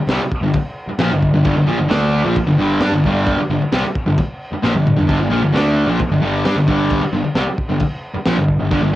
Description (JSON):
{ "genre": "garage rock duo or trio", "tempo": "132 BPM", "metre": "4/4", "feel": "straight", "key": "G minor", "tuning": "A4 = 440 Hz", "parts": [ { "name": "fuzz guitar", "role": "riff", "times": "0.1-8.9 s", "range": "G2 to D4", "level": "-16 LUFS", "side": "equal", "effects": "distortion, cassette tape" }, { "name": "fuzz picked electric bass", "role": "bass", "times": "0.1-8.9 s", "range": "G1 to G2", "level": "-21 LUFS", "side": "equal", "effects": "overdrive, tube saturation" }, { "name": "crunchy breakbeat drum kit", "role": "drums", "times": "0.1-8.8 s", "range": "crash cymbal, kick drum, snare drum, toms", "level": "-22 LUFS", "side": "equal", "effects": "cassette tape" } ], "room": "light reverb", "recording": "home recording on cassette", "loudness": "-14 LUFS", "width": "side -14 dB against mid", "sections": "0.0-9.0 A section", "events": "drum fill 4.6-5.1", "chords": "0.0 Gm" }